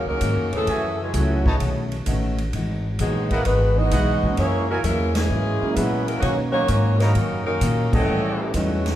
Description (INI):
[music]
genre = jazz, big band swing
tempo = 130 BPM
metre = 4/4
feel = swing 68% on 8ths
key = unclear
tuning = A4 = 440 Hz
[part]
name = warm saxophone section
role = melody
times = 0.0-9.0 s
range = Fb3 to D#5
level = -25 LUFS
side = left 1 dB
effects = none
[part]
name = clear trombone section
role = second line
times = 0.0-9.0 s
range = G2 to D#4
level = -28 LUFS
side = right 2 dB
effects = none
[part]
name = picked steel-string acoustic guitar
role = accompaniment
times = 0.0-8.9 s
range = A2 to Ab4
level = -29 LUFS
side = left 3 dB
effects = none
[part]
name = upright bass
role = bass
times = 0.0-9.0 s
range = G#1 to B2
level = -23 LUFS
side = equal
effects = none
[part]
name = swinging big-band drum kit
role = drums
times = 0.2-8.9 s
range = crash cymbal, hi-hat, kick drum, ride cymbal, snare drum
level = -29 LUFS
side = equal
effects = none
[part]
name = mellow trumpet section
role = stabs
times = 0.7-8.5 s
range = D#4 to A#5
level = -30 LUFS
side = right 1 dB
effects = none
[part]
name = warm concert grand piano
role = accompaniment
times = 1.1-8.8 s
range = E3 to F#5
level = -29 LUFS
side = right 3 dB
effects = none
[sound]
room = wet recital hall reverb, RT60 1.4 s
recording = recorded in a church or concert hall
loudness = -19 LUFS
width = side -12 dB against mid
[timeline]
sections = 0.0-9.0 A section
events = band accent 5.1, 7.9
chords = 0.0 Ebm7; 0.7 Gbm9; 1.6 B9; 2.5 Emaj9; 4.4 Gb9; 6.2 Bmaj9; 8.1 A7#11